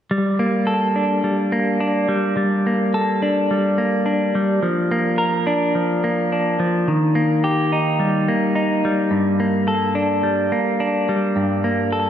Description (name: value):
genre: rock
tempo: 107 BPM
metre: 4/4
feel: straight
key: G minor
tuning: A4 = 439 Hz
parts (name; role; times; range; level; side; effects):
- clean electric guitar; arpeggios; 0.1-12.1 s; G2 to Bb4; -17 LUFS; equal; spring reverb, slapback echo
room: wet lush hall reverb, RT60 2.5 s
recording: big arena sound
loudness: -17 LUFS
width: side -9 dB against mid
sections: 0.1-12.1 A section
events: none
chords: 0.1 Gmadd9; 4.6 Bb/F; 6.9 Eb; 9.1 Gmadd9